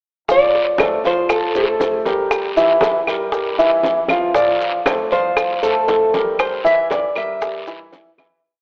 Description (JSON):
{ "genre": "latin, Cuban son and guajira", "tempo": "118 BPM", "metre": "4/4", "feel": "straight", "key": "F major", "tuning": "A4 = 440 Hz", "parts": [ { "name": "nylon-string guitar", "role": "melody", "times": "0.3-8.2 s", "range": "G4 to E5", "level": "-20 LUFS", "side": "equal", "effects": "none" }, { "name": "dark baby grand piano", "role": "arpeggios", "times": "0.3-8.4 s", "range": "E3 to F5", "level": "-21 LUFS", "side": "equal", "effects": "none" }, { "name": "upright bass", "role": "bass", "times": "0.3-8.4 s", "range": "F1 to G2", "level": "-45 LUFS", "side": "equal", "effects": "none" }, { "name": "bongos", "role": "percussion", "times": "0.3-8.4 s", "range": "none", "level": "-27 LUFS", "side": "equal", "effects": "none" }, { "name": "congas", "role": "percussion", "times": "0.3-8.4 s", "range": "none", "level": "-28 LUFS", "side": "equal", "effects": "none" }, { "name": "guiro", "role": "percussion", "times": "0.3-8.4 s", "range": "none", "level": "-32 LUFS", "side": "equal", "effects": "none" }, { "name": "maracas", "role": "percussion", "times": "0.3-8.4 s", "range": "none", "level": "-43 LUFS", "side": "equal", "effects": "none" }, { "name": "claves", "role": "percussion", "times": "0.8-8.4 s", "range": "none", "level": "-30 LUFS", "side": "equal", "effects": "none" } ], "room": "wet lush hall reverb, RT60 2.6 s", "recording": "rough home demo mix, telephone sound", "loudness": "-17 LUFS", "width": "mono", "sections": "0.3-8.4 montuno (vamp)", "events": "fade-out 6.4-8.4", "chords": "0.3 F6; 2.3 Edim; 4.3 F6; 6.4 C7", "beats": "| 0.29 0.79 1.30 1.81 | 2.31 2.82 3.33 3.84 | 4.35 4.86 5.37 5.88 | 6.39 6.90 7.42 7.93" }